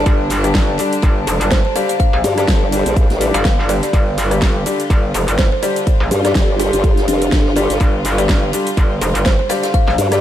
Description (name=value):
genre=bass house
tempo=124 BPM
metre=4/4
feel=swing 56% on 16ths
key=unclear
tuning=A4 = 440 Hz
part: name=rich studio string section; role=sustained chords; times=0.0-10.2 s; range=D3 to F4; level=-24 LUFS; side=left 1 dB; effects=sidechain pumping
part: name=formant-sweep wobble bass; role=bass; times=0.0-10.2 s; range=F1 to G2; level=-17 LUFS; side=equal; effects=chorus, tube saturation, sidechain pumping
part: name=metallic wobble bass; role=bass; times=0.1-10.0 s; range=F1 to Bb1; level=-18 LUFS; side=equal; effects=chorus, overdrive, sidechain pumping
part: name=big-room dance drum kit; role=drums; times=0.1-10.2 s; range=hi-hat, ride cymbal, rim click, shaker, snare drum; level=-23 LUFS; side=equal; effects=overdrive
part: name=electronic kick drum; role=drums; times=0.1-9.8 s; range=none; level=-15 LUFS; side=equal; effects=none
part: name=vintage drum kit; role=drums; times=0.1-10.2 s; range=ride cymbal, snare drum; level=-33 LUFS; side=left 1 dB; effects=none
part: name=clear grand piano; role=stabs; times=0.4-10.2 s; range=G3 to D5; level=-22 LUFS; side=left 3 dB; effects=sidechain pumping, ping-pong delay
part: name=kalimba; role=melody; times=1.3-9.9 s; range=D4 to F5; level=-22 LUFS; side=equal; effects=ping-pong delay
room=light reverb, small room ambience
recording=none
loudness=-13 LUFS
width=side -11 dB against mid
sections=0.0-10.2 A section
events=none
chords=0.0 G5